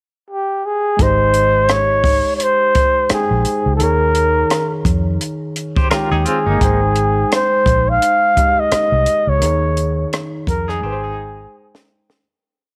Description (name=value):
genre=lush 1970s-style soul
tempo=85 BPM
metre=4/4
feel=swing 58% on 16ths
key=Ab major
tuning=A4 = 440 Hz
part: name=breathy flugelhorn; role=melody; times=0.3-11.9 s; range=G4 to F5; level=-18 LUFS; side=equal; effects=none
part: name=barky tine electric piano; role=accompaniment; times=1.0-12.3 s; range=Eb3 to G5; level=-26 LUFS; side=equal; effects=overdrive, phaser
part: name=vintage muted fingered electric bass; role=bass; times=1.0-11.4 s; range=G1 to F2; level=-21 LUFS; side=equal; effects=none
part: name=compact cocktail drum kit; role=drums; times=1.0-12.2 s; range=hi-hat, kick drum, rim click, snare drum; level=-22 LUFS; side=equal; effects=none
part: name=semi-hollow electric guitar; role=riff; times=5.8-12.1 s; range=Bb3 to C5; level=-25 LUFS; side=equal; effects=tremolo
room=small room ambience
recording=none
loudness=-16 LUFS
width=mono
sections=0.0-1.0 pickup bar; 1.0-12.2 A section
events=fade-out 9.4-12.2; drum fill 10.8-12.2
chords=0.0 N.C.; 1.0 Abmaj7; 3.8 Eb7sus4; 6.6 Abmaj7; 9.4 Eb7sus4; 10.8 Abmaj7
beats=0.29 | 0.99 1.69 2.40 3.10 | 3.80 4.50 5.21 5.91 | 6.61 7.31 8.02 8.72 | 9.42 10.12 10.83 11.53